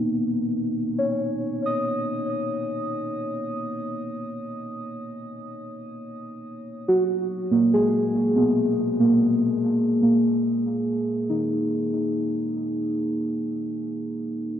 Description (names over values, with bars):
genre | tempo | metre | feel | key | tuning
ambient | free time | none | none | B major | A4 = 441 Hz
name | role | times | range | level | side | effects
muted felt-like synth keys | solo | 0.0-14.6 s | A#3 to D#6 | -22 LUFS | equal | chorus, analog delay
room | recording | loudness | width
wet plate reverb, RT60 3.0 s | echo-heavy mix | -22 LUFS | side -10 dB against mid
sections
0.0-14.6 A section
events
none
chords
0.0 B69; 9.5 F#add9 (rootless)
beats
free time